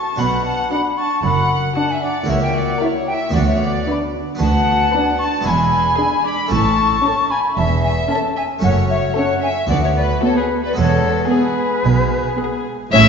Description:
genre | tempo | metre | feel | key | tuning
classical, baroque-style concerto movement with solo episodes | 113 BPM | 4/4 | straight | unclear | A4 = 439 Hz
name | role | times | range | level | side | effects
concert flute | melody | 0.0-13.0 s | B4 to D6 | -21 LUFS | left 3 dB | none
warm chamber violin section | melody | 0.0-13.1 s | F#4 to E5 | -22 LUFS | left 7 dB | none
rich chamber violin section | second line | 0.0-13.1 s | G#4 to B5 | -22 LUFS | left 1 dB | none
dark chamber viola section | accompaniment | 0.0-13.0 s | B3 to E4 | -24 LUFS | right 1 dB | none
harpsichord | accompaniment | 0.0-13.1 s | C#2 to F#4 | -25 LUFS | equal | none
rich chamber cello section | bass | 0.2-13.1 s | C#2 to B2 | -21 LUFS | right 3 dB | none
rich chamber double bass section | bass | 0.2-13.1 s | E1 to D2 | -23 LUFS | right 3 dB | none
room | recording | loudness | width
wet concert hall reverb, RT60 2.0 s | heard from further back in the room, nothing above 7.6 kHz | -15 LUFS | side -6 dB against mid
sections
0.0-12.9 A section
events
none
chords
0.2 Bm; 2.3 F#7/C#; 3.3 Bm/D; 5.5 E7; 6.5 A; 8.6 F#m; 9.7 Bm/D; 10.8 E

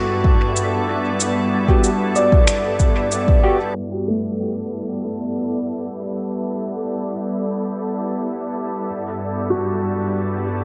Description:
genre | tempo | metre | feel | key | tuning
ambient dub | 94 BPM | 4/4 | straight | E minor | A4 = 439 Hz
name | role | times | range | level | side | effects
soft additive organ-like pad | sustained chords | 0.0-10.6 s | G2 to D5 | -24 LUFS | equal | ensemble chorus, built-in reverb
felt-muted upright piano | arpeggios | 0.0-10.6 s | A3 to D5 | -27 LUFS | equal | vintage 12-bit sampler grit, low-pass filter, dub echo
electronic kick drum | drums | 0.2-3.4 s | none | -18 LUFS | equal | studio reverb
electronic cabasa and finger snaps | drums | 0.6-3.2 s | none | -27 LUFS | equal | studio reverb, dub echo
tine electric piano | stabs | 1.7-3.6 s | B3 to G4 | -27 LUFS | equal | analog chorus, dub echo
room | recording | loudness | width
moderate echo chamber reverb, RT60 2.0 s | low-pass filter, nothing above 10.3 kHz | -20 LUFS | mono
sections
0.0-3.8 A section; 3.8-10.6 B section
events
filter sweep on felt piano 3.8-10.6; filter sweep 3.8-10.6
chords
0.0 Gmaj7; 3.8 Em7; 8.9 Gmaj7

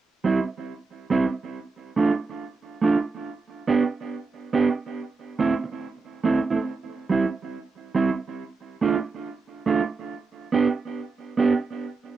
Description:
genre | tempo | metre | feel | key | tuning
reggae | 70 BPM | 4/4 | swing 60% on 16ths | C major | A4 = 439 Hz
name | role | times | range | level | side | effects
mellow electric guitar | accompaniment | 0.2-11.5 s | G3 to G4 | -23 LUFS | right 4 dB | cassette tape, tape echo
room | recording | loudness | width
wet booth ambience, RT60 0.2 s | home recording on cassette | -22 LUFS | side -11 dB against mid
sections
0.0-12.2 A section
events
none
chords
0.0 C; 1.5 Dm; 3.2 G; 5.0 Am; 6.7 C; 8.4 Dm; 10.1 G

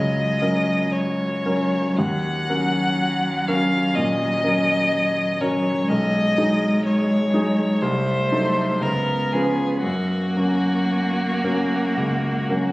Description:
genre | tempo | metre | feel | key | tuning
classical, slow romantic movement for piano trio | 55-63 BPM | 4/4 | rubato | F# major | A4 = 441 Hz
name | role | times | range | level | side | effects
rich violin | melody | 0.0-12.7 s | F#4 to F#5 | -24 LUFS | left 1 dB | none
warm cello | second line | 0.0-12.7 s | F#3 to B3 | -26 LUFS | right 1 dB | none
warm grand piano | accompaniment | 0.0-12.7 s | B1 to B4 | -22 LUFS | equal | none
room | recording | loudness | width
wet recital hall reverb, RT60 1.6 s | recorded on a phone in the room, studio reverb | -19 LUFS | side -20 dB against mid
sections
0.0-12.7 A section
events
none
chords
0.0 F#; 2.0 D#m7; 5.9 G#m7/B; 7.8 Cdim7; 8.8 C#7; 9.8 F#

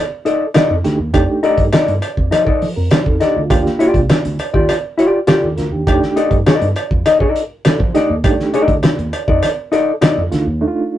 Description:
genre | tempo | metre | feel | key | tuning
funk | 101 BPM | 4/4 | straight | unclear | A4 = 440 Hz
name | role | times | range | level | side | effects
hollow-body jazz guitar | accompaniment | 0.3-10.2 s | Eb4 to Eb5 | -14 LUFS | left 2 dB | none
cloth-damped thuddy drum kit | drums | 0.3-10.5 s | hi-hat, kick drum, snare drum | -16 LUFS | equal | none
cowbell | percussion | 0.5-10.2 s | none | -23 LUFS | right 3 dB | none
fingered electric bass | bass | 0.7-10.6 s | C2 to F3 | -20 LUFS | right 1 dB | none
reed electric piano | stabs | 0.8-11.0 s | G3 to D5 | -19 LUFS | right 2 dB | fast tremolo
room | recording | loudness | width
moderate booth ambience, RT60 0.2 s | rough rehearsal-room recording, nothing above 10.6 kHz | -12 LUFS | side -12 dB against mid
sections
0.0-11.0 A section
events
reed electric piano fill 1.7-3.5, 7.4-8.2; silent gap 10.6-11.0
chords
0.0 F13; 3.5 Ebmaj9; 5.9 F13

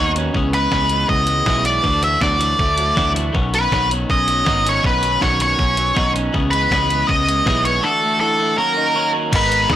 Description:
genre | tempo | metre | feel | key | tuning
indie rock | 160 BPM | 4/4 | straight | B major | A4 = 438 Hz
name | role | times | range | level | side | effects
octave-fuzz lead guitar | melody | 0.0-9.8 s | A4 to E5 | -17 LUFS | equal | distortion
electric guitar through a small old amp | riff | 0.0-9.8 s | B2 to C#5 | -25 LUFS | right 4 dB | wide subtle chorus
twelve-string electric guitar | riff | 0.0-9.8 s | D#3 to A#4 | -25 LUFS | left 5 dB | none
picked electric bass | bass | 0.0-9.8 s | G#1 to G#2 | -22 LUFS | equal | none
detuned 8-bit digital drum machine | drums | 0.2-9.8 s | crash cymbal, hi-hat, kick drum, snare drum | -22 LUFS | equal | none
room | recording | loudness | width
little or no reverb | blown-out, overdriven recording, overdrive | -15 LUFS | side -11 dB against mid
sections
0.0-9.3 A section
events
none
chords
0.3 C#m7; 1.8 Dadd9; 3.3 Badd9; 6.3 C#m7; 7.8 Dadd9; 8.6 F#6

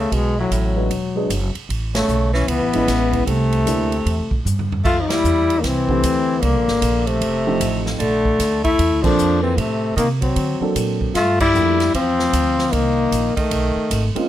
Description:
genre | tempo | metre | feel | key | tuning
jazz, small-group swing and bop | 152 BPM | 4/4 | swing 64% on 8ths | F major from 4.8 s | A4 = 440 Hz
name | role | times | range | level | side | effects
clear trombone | melody | 0.0-14.1 s | F#3 to F4 | -20 LUFS | left 4 dB | plate reverb
clear tenor saxophone | second line | 0.0-14.1 s | A2 to A3 | -24 LUFS | right 3 dB | none
upright bass | bass | 0.0-14.2 s | E1 to D3 | -22 LUFS | right 1 dB | none
swinging big-band drum kit | drums | 0.1-14.2 s | crash cymbal, hi-hat, kick drum, ride cymbal, snare drum, toms | -26 LUFS | right 1 dB | none
dark grand piano | accompaniment | 0.8-11.8, 14.1-14.3 s | E3 to A4 | -23 LUFS | right 1 dB | none
room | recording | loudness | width
light reverb | close, detailed microphones | -16 LUFS | side -12 dB against mid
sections
0.0-4.8 A section; 4.8-14.3 B section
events
band accent 1.9, 5.0, 9.0, 11.3; drum fill 4.5-4.8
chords
0.1 Bm7; 0.9 E9; 1.7 Amaj7; 3.3 C13; 4.8 Fmaj9; 6.4 Csus2; 7.2 F7; 8.0 Bbmaj7; 9.6 Am6; 10.4 D7b13; 11.2 Gm9; 12.7 Bbsus24; 13.5 B7#11

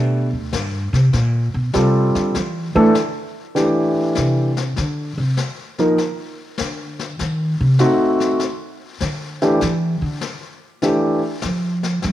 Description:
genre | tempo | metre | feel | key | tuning
jazz piano trio | 99 BPM | 4/4 | swing 68% on 8ths | F major from 3.6 s | A4 = 442 Hz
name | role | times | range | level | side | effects
warm concert grand piano | melody | 0.0-11.2 s | E3 to B4 | -18 LUFS | equal | slapback echo
upright bass | bass | 0.0-12.1 s | D2 to A3 | -19 LUFS | equal | none
snare drum and brushed snare drum | drums | 0.5-12.1 s | none | -29 LUFS | left 6 dB | none
room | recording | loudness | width
light reverb | 1960s-style stereo | -17 LUFS | side -13 dB against mid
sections
0.0-3.6 A section; 3.6-12.1 A section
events
upright bass solo 0.0-12.1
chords
0.0 Csus2; 1.1 Gm7; 2.3 Esus4; 3.6 Fmaj7 (rootless); 6.0 N.C.; 7.2 Cdim7; 8.4 Dsus2; 10.8 Fmaj13/E

